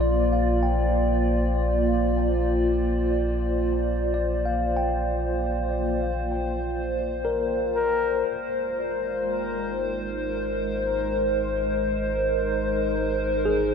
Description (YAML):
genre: ambient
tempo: 58 BPM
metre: 4/4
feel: straight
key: unclear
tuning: A4 = 442 Hz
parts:
  - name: warbly tape-like pad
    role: sustained chords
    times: 0.0-13.7 s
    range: Ab3 to D5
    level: -25 LUFS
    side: equal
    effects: chorus, built-in reverb, phaser
  - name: tine electric piano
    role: arpeggios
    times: 0.0-13.7 s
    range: Ab4 to G5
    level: -30 LUFS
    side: left 2 dB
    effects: diffuse ambient delay
  - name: warm sub bass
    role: bass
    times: 0.0-13.7 s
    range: Ab1 to Bb1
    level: -28 LUFS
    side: equal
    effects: none
  - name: mellow flugelhorn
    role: melody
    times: 7.8-8.2 s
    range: Bb4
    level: -31 LUFS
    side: left 4 dB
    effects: diffuse ambient delay
room: wet huge ambient reverb, RT60 8.2 s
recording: dark, warm production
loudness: -22 LUFS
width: side -6 dB against mid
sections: 0.0-13.7 A section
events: none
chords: 0.0 Bb7; 8.3 Ab